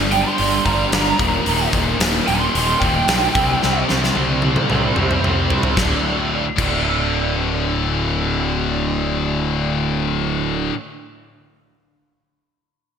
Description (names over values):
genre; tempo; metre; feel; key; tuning
hard rock; 111 BPM; 4/4; straight; unclear; A4 = 440 Hz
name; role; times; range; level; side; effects
cranked stack guitar; riff; 0.0-10.8 s; D2 to C4; -23 LUFS; right 8 dB; overdrive, ensemble chorus
scooped high-gain guitar; riff; 0.0-10.7 s; D2 to C4; -22 LUFS; left 10 dB; distortion
fuzz picked electric bass; bass; 0.0-10.7 s; D1 to C2; -23 LUFS; equal; overdrive
lead guitar through a small cranked amp; melody; 0.1-3.8 s; G5 to C6; -21 LUFS; right 3 dB; overdrive, wide subtle chorus, digital delay
huge arena drum kit; drums; 0.1-6.7 s; crash cymbal, hi-hat, kick drum, snare drum, toms; -21 LUFS; left 1 dB; none
room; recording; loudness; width
moderate lush hall reverb, RT60 1.9 s, small room ambience; bright 1980s-style digital production; -16 LUFS; side -7 dB against mid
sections
0.0-5.8 A section; 5.8-10.1 B section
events
lead electric guitar solo 0.0-5.8; drum fill 3.6-5.8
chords
0.0 Gm; 1.2 Eb; 3.3 C5; 5.8 D5